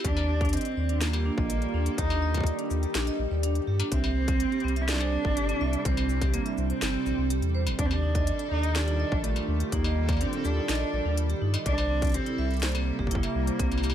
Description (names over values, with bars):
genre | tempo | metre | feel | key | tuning
IDM | 124 BPM | 4/4 | straight | Eb lydian | A4 = 440 Hz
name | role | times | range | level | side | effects
rich cello | melody | 0.0-13.9 s | A3 to E4 | -31 LUFS | right 2 dB | digital delay
warbly tape-like pad | sustained chords | 0.0-13.9 s | Bb2 to G4 | -35 LUFS | equal | chorus, built-in reverb
vibraphone with hard mallets | arpeggios | 0.0-13.9 s | C4 to E5 | -34 LUFS | right 4 dB | tape echo
warm sub bass | bass | 0.0-13.9 s | G1 to G2 | -28 LUFS | equal | none
electronic kick drum | drums | 0.0-13.7 s | none | -30 LUFS | left 1 dB | distortion, overdrive
industrial drum kit | drums | 0.0-13.9 s | cabasa, hi-hat, snare drum, struck metal | -34 LUFS | left 2 dB | overdrive
backwards swelling texture | texture | 0.0-13.9 s | G3 to A4 | -41 LUFS | left 1 dB | built-in reverb
room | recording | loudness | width
light reverb | none | -24 LUFS | side -10 dB against mid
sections
0.0-13.9 A section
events
none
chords
0.0 Ebmaj7; 3.9 C7; 7.8 Ebmaj7; 11.7 C7